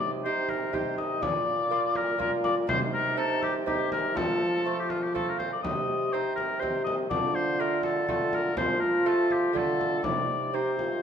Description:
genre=classical, renaissance-style consort dance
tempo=122 BPM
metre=3/4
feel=straight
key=C dorian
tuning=A4 = 440 Hz
part: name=warm oboe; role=melody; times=0.0-11.0 s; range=F4 to Eb5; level=-29 LUFS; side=left 4 dB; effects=none
part: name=lute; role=accompaniment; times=0.0-11.0 s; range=Bb2 to G4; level=-33 LUFS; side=right 6 dB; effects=none
part: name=mellow trombone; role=accompaniment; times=0.0-11.0 s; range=Eb4 to G4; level=-32 LUFS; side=left 1 dB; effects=none
part: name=warm bassoon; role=bass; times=0.0-11.0 s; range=Bb2 to F3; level=-32 LUFS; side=right 2 dB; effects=none
part: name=frame drum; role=percussion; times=0.5-11.0 s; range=none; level=-36 LUFS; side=left 1 dB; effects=none
room=wet recital hall reverb, RT60 1.7 s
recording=minimal, uncompressed stereo recording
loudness=-25 LUFS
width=side -8 dB against mid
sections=0.0-11.0 A section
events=none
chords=0.0 Cm; 1.2 Bb; 2.7 Cm; 4.2 F; 5.6 Cm; 7.1 Dm; 10.0 Cm

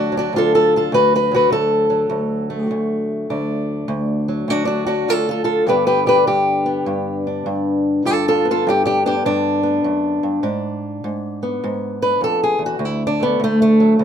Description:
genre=acoustic country blues, solo or duo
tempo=101 BPM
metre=4/4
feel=swing 65% on 8ths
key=D major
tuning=A4 = 440 Hz
part: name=fingerpicked old ladder-braced acoustic guitar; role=solo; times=0.0-14.0 s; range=D2 to B4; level=-16 LUFS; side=equal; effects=none
room=light reverb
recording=minimal, uncompressed stereo recording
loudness=-16 LUFS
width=side -8 dB against mid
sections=0.0-14.0 A section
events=steel-string acoustic guitar solo 0.0-14.0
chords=0.0 D; 5.7 G; 10.4 G#dim7; 12.8 D

